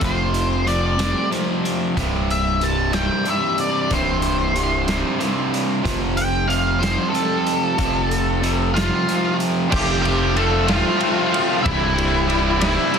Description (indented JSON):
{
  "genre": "quiet-loud alternative rock",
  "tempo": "62 BPM (dotted quarters)",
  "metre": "6/8",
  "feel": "straight",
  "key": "unclear",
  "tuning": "A4 = 442 Hz",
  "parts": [
    { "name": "octave-fuzz lead guitar", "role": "melody", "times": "0.0-13.0 s", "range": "E4 to A5", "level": "-22 LUFS", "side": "left 1 dB", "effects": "distortion, digital delay" },
    { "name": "twelve-string electric guitar", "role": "arpeggios", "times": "0.0-2.0 s", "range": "F2 to D4", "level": "-30 LUFS", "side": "left 5 dB", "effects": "digital delay" },
    { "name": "overdriven semi-hollow guitar", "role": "riff", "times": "0.0-13.0 s", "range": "C2 to F4", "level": "-21 LUFS", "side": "right 1 dB", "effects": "none" },
    { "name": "growling picked electric bass", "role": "bass", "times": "0.0-12.8 s", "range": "C1 to F1", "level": "-23 LUFS", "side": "equal", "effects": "overdrive" },
    { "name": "raw garage drum kit", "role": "drums", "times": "0.0-13.0 s", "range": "crash cymbal, hi-hat, kick drum, ride cymbal, snare drum", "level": "-26 LUFS", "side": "equal", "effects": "none" },
    { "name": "percussive tonewheel organ", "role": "sustained chords", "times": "9.7-13.0 s", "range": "E4 to A5", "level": "-30 LUFS", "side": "equal", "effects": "none" }
  ],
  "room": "light reverb",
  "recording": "dense, heavily limited modern master",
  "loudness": "-17 LUFS",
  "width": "side -6 dB against mid",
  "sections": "0.0-9.7 A section; 9.7-13.0 B section",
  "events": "lead electric guitar solo 0.0-9.7",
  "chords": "0.0 F6; 2.0 C5; 5.9 F; 11.7 C",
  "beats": "| 0.02 0.99 | 1.97 2.94 | 3.91 4.88 | 5.85 6.82 | 7.79 8.76 | 9.72 10.69 | 11.65 12.62"
}